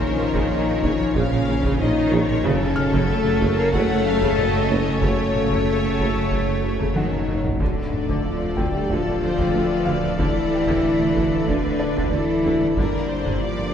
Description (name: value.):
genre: cinematic, hybrid orchestral and electronic film score.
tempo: 93 BPM.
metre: 4/4.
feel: straight.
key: unclear.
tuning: A4 = 440 Hz.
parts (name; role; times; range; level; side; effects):
warm symphonic violin section; melody; 0.0-13.7 s; Db5 to D5; -32 LUFS; left 4 dB; none.
warm symphonic violin section; second line; 0.0-13.7 s; G4 to Gb5; -32 LUFS; left 2 dB; none.
rich symphonic viola section; accompaniment; 0.0-13.7 s; Db3 to Bb4; -31 LUFS; right 2 dB; none.
bright trombone section; sustained chords; 0.0-13.7 s; Bb2 to Db4; -33 LUFS; right 2 dB; none.
chorused pulse-width pad; sustained chords; 0.0-13.7 s; Db3 to D5; -30 LUFS; equal; none.
mellow French horn section; sustained chords; 0.0-13.7 s; Db4 to Bb4; -24 LUFS; left 4 dB; none.
clear symphonic cello section; bass; 0.0-13.7 s; Db3 to Bb3; -27 LUFS; right 4 dB; none.
wide detuned saw bass; bass; 0.0-13.7 s; D1 to Bb1; -30 LUFS; equal; chorus.
felt-muted upright piano; texture; 0.0-13.7 s; D4 to F6; -35 LUFS; left 1 dB; none.
taiko ensemble; drums; 0.2-13.7 s; none; -28 LUFS; equal; none.
rich symphonic double bass section; bass; 0.3-13.6 s; Gb1 to G2; -29 LUFS; right 3 dB; none.
mellow tuba; bass; 0.8-12.8 s; Gb1 to D2; -30 LUFS; right 3 dB; none.
room: wet church reverb, RT60 3.5 s.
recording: recorded in a church or concert hall.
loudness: -18 LUFS.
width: side -8 dB against mid.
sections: 0.0-13.7 A section.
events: drum fill 7.0-7.6.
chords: 0.0 Bbm; 2.4 Gbm; 7.6 Dm; 12.8 Gm.